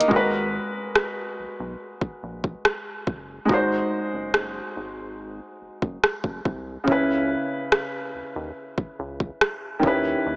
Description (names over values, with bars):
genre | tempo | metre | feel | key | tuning
contemporary R&B | 71 BPM | 4/4 | straight | G# minor | A4 = 440 Hz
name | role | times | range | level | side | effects
felt-muted upright piano | accompaniment | 0.0-10.4 s | C#3 to B#4 | -24 LUFS | equal | none
smooth R&B drum kit | drums | 0.0-10.0 s | hi-hat, kick drum, rim click | -23 LUFS | equal | none
rubbery square bass | bass | 0.1-10.4 s | F#1 to D#2 | -36 LUFS | equal | none
room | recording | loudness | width
moderate plate reverb, RT60 3.4 s | small speaker sound | -23 LUFS | side -24 dB against mid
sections
0.1-10.4 A section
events
none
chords
0.1 G#m9; 3.5 G#7; 6.9 C#m7; 9.8 D#7b9b13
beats
| 0.11 0.96 1.80 2.65 | 3.49 4.34 5.18 6.03 | 6.87 7.72 8.56 9.41 | 10.25